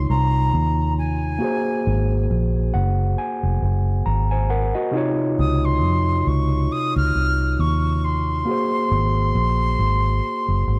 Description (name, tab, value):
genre	lovers rock reggae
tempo	68 BPM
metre	4/4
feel	swing 56% on 16ths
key	Db major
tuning	A4 = 440 Hz
part	silver concert flute	melody	0.0-10.8 s	Ab5 to F6	-26 LUFS	equal	tape echo
part	overdriven tine electric piano	accompaniment	0.0-10.8 s	C3 to Bb5	-27 LUFS	equal	none
part	vintage muted fingered electric bass	bass	0.0-10.8 s	F1 to F2	-22 LUFS	equal	none
room	small room ambience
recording	dry, close 1970s-style studio recording, lossy compression artefacts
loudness	-21 LUFS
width	mono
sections	0.0-10.8 A section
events	tine electric piano fill 2.3-4.9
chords	0.0 Dbmaj9; 1.4 Ab9; 4.9 Dbmaj9; 8.5 Ab9